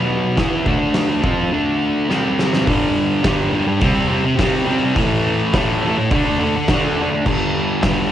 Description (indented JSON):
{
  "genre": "garage rock duo or trio",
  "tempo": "105 BPM",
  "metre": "4/4",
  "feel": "straight",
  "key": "unclear",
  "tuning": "A4 = 440 Hz",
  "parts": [
    { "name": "thick fuzz guitar", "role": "riff", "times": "0.0-8.1 s", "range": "G2 to F4", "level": "-16 LUFS", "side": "equal", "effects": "distortion, cassette tape" },
    { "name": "oversized low-tuned drum kit", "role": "drums", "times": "0.4-8.0 s", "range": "crash cymbal, hi-hat, kick drum, snare drum", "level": "-21 LUFS", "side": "equal", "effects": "cassette tape" }
  ],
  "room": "light reverb, small room ambience",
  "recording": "home recording on cassette",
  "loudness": "-15 LUFS",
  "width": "side -11 dB against mid",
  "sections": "0.0-2.7 A section; 2.7-8.1 B section",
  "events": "drum fill 2.1-2.7",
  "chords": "0.4 E5; 0.7 D5; 1.2 F5; 1.5 D5; 2.1 C5; 2.7 G5; 3.8 C5; 5.0 A5; 6.1 D5; 7.3 G5"
}